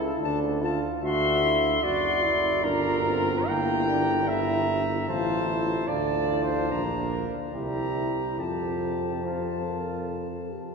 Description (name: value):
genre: classical, brass quintet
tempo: 73 BPM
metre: 3/4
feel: rubato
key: F major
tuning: A4 = 440 Hz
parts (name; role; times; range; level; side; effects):
- warm flugelhorn; second line; 0.0-10.5 s; F4 to G5; -29 LUFS; right 3 dB; none
- warm trombone; accompaniment; 0.0-10.5 s; Bb3 to F#4; -33 LUFS; right 2 dB; none
- clear bass trombone; bass; 0.0-10.6 s; F#1 to F2; -30 LUFS; right 1 dB; none
- clear trumpet; melody; 0.2-10.6 s; A5 to C6; -31 LUFS; left 4 dB; none
- mellow French horn; accompaniment; 0.2-10.7 s; D4 to C5; -32 LUFS; left 4 dB; none
room: wet cathedral reverb, RT60 4.8 s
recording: heard from further back in the room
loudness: -24 LUFS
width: side -5 dB against mid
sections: 0.0-10.7 A section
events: none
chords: 0.2 Dm; 1.0 D7; 2.6 Gm7; 3.5 Gm6; 5.1 F/A; 5.9 Dm; 6.7 Bb; 7.5 C7; 8.4 F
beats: 0.22 | 1.03 1.83 2.64 | 3.47 4.28 5.09 | 5.89 6.71 7.55 | 8.39 9.25 10.10